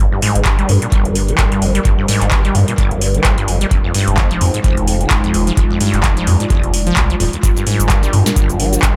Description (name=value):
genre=acid house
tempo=129 BPM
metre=4/4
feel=swing 56% on 16ths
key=G phrygian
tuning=A4 = 440 Hz
part: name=dark analog pad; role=sustained chords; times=0.0-9.0 s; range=G3 to D5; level=-24 LUFS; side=equal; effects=chorus, sidechain pumping
part: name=acid bass, saw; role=riff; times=0.0-8.9 s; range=F1 to G3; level=-21 LUFS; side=equal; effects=overdrive, lush chorus, tape echo
part: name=saturated sub bass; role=bass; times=0.0-8.9 s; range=Eb1 to G2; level=-20 LUFS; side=equal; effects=sidechain pumping
part: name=booming analog drum machine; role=drums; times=0.2-8.9 s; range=handclaps, hi-hat, shaker, snare drum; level=-22 LUFS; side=equal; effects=overdrive, tape echo
part: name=electronic kick drum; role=drums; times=0.5-8.9 s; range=none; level=-18 LUFS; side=equal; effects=overdrive
room=light reverb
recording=echo-heavy mix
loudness=-14 LUFS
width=mono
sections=0.0-9.0 A section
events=none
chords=0.0 Gm7; 3.7 Fm7; 7.4 Gm7